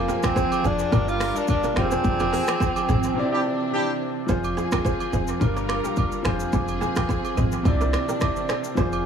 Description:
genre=afrobeats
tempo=107 BPM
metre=4/4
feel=swing 55% on 16ths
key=F dorian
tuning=A4 = 441 Hz
part: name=breathy tenor saxophone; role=melody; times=0.0-3.5 s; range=Bb3 to F4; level=-26 LUFS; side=equal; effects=analog delay
part: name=clear concert grand piano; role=accompaniment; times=0.0-9.1 s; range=C3 to D5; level=-27 LUFS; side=left 3 dB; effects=analog delay
part: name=warm symphonic string section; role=sustained chords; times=0.0-9.1 s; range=E3 to Bb4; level=-30 LUFS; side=right 3 dB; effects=none
part: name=kora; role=riff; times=0.0-8.9 s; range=F4 to Eb5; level=-32 LUFS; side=right 6 dB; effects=analog delay
part: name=deep log drum bass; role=bass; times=0.0-9.1 s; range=F1 to C2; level=-25 LUFS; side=equal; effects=none
part: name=afro-pop drum kit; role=drums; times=0.1-9.0 s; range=finger snaps, hi-hat, kick drum, rim click, shaker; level=-27 LUFS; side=equal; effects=analog delay
part: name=agogo bells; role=percussion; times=0.2-9.0 s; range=none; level=-33 LUFS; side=right 4 dB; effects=analog delay
part: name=clear horn section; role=second line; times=3.3-3.9 s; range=D4 to G4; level=-28 LUFS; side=equal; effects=none
room=light reverb, studio reverb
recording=echo-heavy mix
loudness=-21 LUFS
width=side -7 dB against mid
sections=0.0-4.3 A section; 4.3-9.1 B section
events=band accent 2.0-4.3; break 3.2-4.3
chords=0.0 Fm; 0.9 Gm7; 1.8 Fm; 3.2 Cadd9; 4.3 Fm; 5.4 Gm7; 6.3 Fm; 7.7 Cadd9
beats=0.36 0.92 1.49 | 2.04 2.61 3.17 3.73 | 4.29 4.85 5.41 5.97 | 6.53 7.09 7.65 8.21 | 8.77

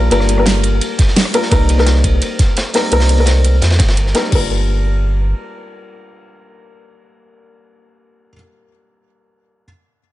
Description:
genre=liquid drum and bass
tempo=171 BPM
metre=4/4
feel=straight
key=G minor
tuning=A4 = 435 Hz
part: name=felt-muted upright piano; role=accompaniment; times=0.0-9.7 s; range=G3 to Bb4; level=-18 LUFS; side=left 2 dB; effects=ping-pong delay
part: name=concert harp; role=arpeggios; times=0.0-0.5 s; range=none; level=barely audible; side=none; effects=none
part: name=warm sub bass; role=bass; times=0.0-5.3 s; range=G1 to F2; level=-14 LUFS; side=equal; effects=tube saturation
part: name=crunchy breakbeat drum kit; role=drums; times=0.1-4.3 s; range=hi-hat, ride cymbal, snare drum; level=-22 LUFS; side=equal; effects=high-pass filter on cymbals, high-pass filter on hats, high-pass filter on snare, high-pass filter on room
part: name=pop drum kit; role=drums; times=0.1-4.4 s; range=crash cymbal, hi-hat, rim click, snare drum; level=-19 LUFS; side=right 1 dB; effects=none
part: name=electronic kick drum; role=drums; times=1.0-4.4 s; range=none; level=-14 LUFS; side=equal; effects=none
room=studio reverb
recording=nothing above 10.5 kHz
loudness=-12 LUFS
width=side -15 dB against mid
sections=0.0-4.3 A section; 4.3-7.1 B section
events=none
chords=0.0 Gm7; 1.5 Cm7; 4.3 Gm7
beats=| 0.11 0.46 0.81 1.16 | 1.51 1.86 2.22 2.57 | 2.92 3.27 3.62 3.97 | 4.32 4.67 5.02 5.37 | 5.72 6.08 6.43 6.78

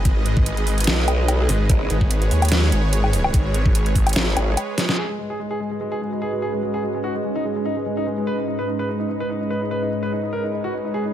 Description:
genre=heavy wobble dubstep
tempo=146 BPM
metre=4/4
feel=swing 54% on 16ths, half-time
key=G# minor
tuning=A4 = 441 Hz
part: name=supersaw pad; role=sustained chords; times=0.0-11.1 s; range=G#2 to D#5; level=-27 LUFS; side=right 1 dB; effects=sidechain pumping, low-pass filter
part: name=snarling distorted saw bass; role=bass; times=0.0-4.1 s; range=G#1 to D#2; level=-20 LUFS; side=equal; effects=distortion, overdrive
part: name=dubstep drum kit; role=drums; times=0.1-5.0 s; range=hi-hat, snare drum, woodblock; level=-23 LUFS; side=equal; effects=low-pass filter on hats, low-pass filter on perc, low-pass filter on snare, low-pass filter on room
part: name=electronic kick drum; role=drums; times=0.1-4.0 s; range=none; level=-18 LUFS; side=equal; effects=none
part: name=growl bass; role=bass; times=0.9-4.6 s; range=G#1 to B1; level=-20 LUFS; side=equal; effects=chorus, overdrive
part: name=warm concert grand piano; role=melody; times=5.0-11.1 s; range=G#3 to B4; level=-26 LUFS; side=left 1 dB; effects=dub echo
part: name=warbly tape-like pad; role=texture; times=5.7-11.1 s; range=G#3 to D#5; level=-27 LUFS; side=right 1 dB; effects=chorus, built-in reverb, phaser, sidechain pumping
room=light reverb, digital ambience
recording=none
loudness=-19 LUFS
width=side -11 dB against mid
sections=0.0-5.0 A section; 5.0-11.1 B section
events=drop 0.0-5.0; drum fill 4.8; filter sweep on supersaw synth 5.0-11.1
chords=0.0 G#m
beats=| 0.05 0.46 0.87 1.28 | 1.70 2.11 2.52 2.93 | 3.34 3.75 4.16 4.57 | 4.98 5.39 5.80 6.22 | 6.63 7.04 7.45 7.86 | 8.27 8.68 9.09 9.50 | 9.91 10.33 10.74

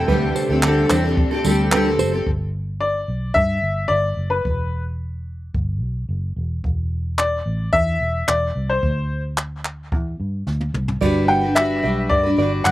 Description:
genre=acoustic pop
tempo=110 BPM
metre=4/4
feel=straight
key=G major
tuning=A4 = 440 Hz
part: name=bright upright piano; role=melody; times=0.0-12.7 s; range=B4 to G5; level=-21 LUFS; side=left 2 dB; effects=none
part: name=picked steel-string acoustic guitar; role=accompaniment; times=0.0-2.3, 11.0-12.7 s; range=D3 to B4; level=-19 LUFS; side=equal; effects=double-tracked left and right, slapback echo
part: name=warm studio string section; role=sustained chords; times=0.0-2.2 s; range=C3 to D4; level=-29 LUFS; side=left 1 dB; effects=none
part: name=vintage muted fingered electric bass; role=bass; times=0.0-12.7 s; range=E1 to G2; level=-23 LUFS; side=equal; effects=none
part: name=nylon-string guitar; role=arpeggios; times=0.1-2.1, 11.0-12.5 s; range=A4 to F#5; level=-26 LUFS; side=right 6 dB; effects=slapback echo
part: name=jazz brush drum kit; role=drums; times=0.1-12.7 s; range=crash cymbal, handclaps, kick drum, snare drum, tambourine, toms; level=-24 LUFS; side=equal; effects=none
room=little or no reverb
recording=recorded outdoors, with no room sound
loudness=-18 LUFS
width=side -15 dB against mid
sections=0.0-2.3 A section; 2.3-12.7 B section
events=drum fill 10.5-11.0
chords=0.1 D7sus4; 2.3 G5; 4.5 Em; 6.6 N.C.; 11.0 Gmaj7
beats=| 0.08 0.63 1.18 1.72 | 2.27 2.81 3.36 3.91 | 4.45 5.00 5.55 6.09 | 6.64 7.19 7.73 8.28 | 8.83 9.38 9.92 10.47 | 11.02 11.56 12.11 12.65

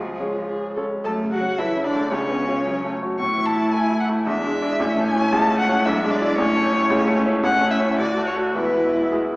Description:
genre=quick classical-period movement for piano quartet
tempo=112 BPM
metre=2/4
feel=uneven beats, rubato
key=F# minor, A major from 5.3 s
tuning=A4 = 440 Hz
part: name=rich violin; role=melody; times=0.0-9.1 s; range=E#4 to C#6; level=-23 LUFS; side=left 1 dB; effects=none
part: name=rich cello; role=second line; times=0.0-9.2 s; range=C#3 to A3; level=-26 LUFS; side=equal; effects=none
part: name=bright grand piano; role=accompaniment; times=0.0-9.4 s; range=A1 to D5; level=-23 LUFS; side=equal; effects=none
part: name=warm viola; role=accompaniment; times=0.0-9.4 s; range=C#4 to A4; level=-26 LUFS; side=equal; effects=none
room=wet recital hall reverb, RT60 1.6 s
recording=heard from further back in the room, small speaker sound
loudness=-18 LUFS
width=side -23 dB against mid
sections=0.0-1.0 A section; 1.0-9.4 B section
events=none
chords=0.0 C#; 1.0 F#m; 2.1 C#7; 2.7 F#m; 3.2 A5; 4.3 E7; 4.8 A; 5.3 A/C#; 5.9 E7/B; 6.4 A; 6.9 A/C#; 7.4 A; 8.0 D; 8.5 E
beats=0.48 | 1.04 1.58 | 2.12 2.66 | 3.19 3.73 | 4.26 4.79 | 5.33 5.86 | 6.38 6.91 | 7.44 7.98 | 8.55 9.12

